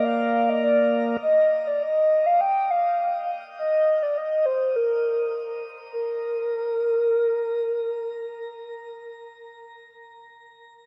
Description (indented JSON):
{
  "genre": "dream pop",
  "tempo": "102 BPM",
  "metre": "4/4",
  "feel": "straight",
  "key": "Bb major",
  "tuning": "A4 = 439 Hz",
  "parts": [
    { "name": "hollow clarinet-like synth lead", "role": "melody", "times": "0.0-9.0 s", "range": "Bb4 to G5", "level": "-24 LUFS", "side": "equal", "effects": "chorus, shimmer reverb" },
    { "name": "mellow tonewheel organ", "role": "sustained chords", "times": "0.0-1.2 s", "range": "Bb3 to F5", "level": "-32 LUFS", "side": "equal", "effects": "slow rotary speaker, shimmer reverb" }
  ],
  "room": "wet studio reverb, RT60 0.6 s",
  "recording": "none",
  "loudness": "-23 LUFS",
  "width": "mono",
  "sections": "0.0-5.9 A section; 5.9-8.3 B section",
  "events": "none",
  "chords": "0.0 Bb; 1.2 N.C.",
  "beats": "0.03 0.62 | 1.21 1.80 2.38 2.97 | 3.56 4.15 4.74 5.33 | 5.91 6.50 7.09 7.68"
}